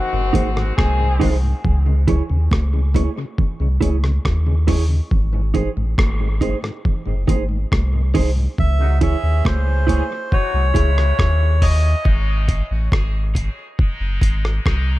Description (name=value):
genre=dub reggae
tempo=69 BPM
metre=4/4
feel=straight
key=C# harmonic minor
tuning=A4 = 441 Hz
part: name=clear horn section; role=second line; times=0.0-1.4, 8.8-15.0 s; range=B#2 to G#4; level=-28 LUFS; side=left 3 dB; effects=high-pass filter, dub echo
part: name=tonewheel organ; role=accompaniment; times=0.1-8.9 s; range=G#2 to C#4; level=-30 LUFS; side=left 3 dB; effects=overdrive, slow rotary speaker, high-pass filter, dub echo
part: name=warm sub bass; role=bass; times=0.1-15.0 s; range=F#1 to D#2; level=-18 LUFS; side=equal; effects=none
part: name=mellow electric guitar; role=accompaniment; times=0.3-14.4 s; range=D#4 to C#5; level=-27 LUFS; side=right 6 dB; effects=high-pass filter, dub echo
part: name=dusty soul sampler-style drum kit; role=drums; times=0.3-14.9 s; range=hi-hat, kick drum, rim click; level=-19 LUFS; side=equal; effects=none
part: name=congas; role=percussion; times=0.4-14.9 s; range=none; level=-29 LUFS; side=right 4 dB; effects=high-pass filter on perc, dub echo
part: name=melodica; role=melody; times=8.6-12.1 s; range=B#4 to E5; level=-25 LUFS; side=equal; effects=dub echo
room=little or no reverb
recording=dark, warm production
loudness=-16 LUFS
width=side -17 dB against mid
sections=0.0-15.0 A section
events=break 0.0-8.6, 12.0-15.0; filter sweep 8.6-15.0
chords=0.0 G#; 1.6 C#m; 5.1 G#; 8.6 C#m; 12.0 G#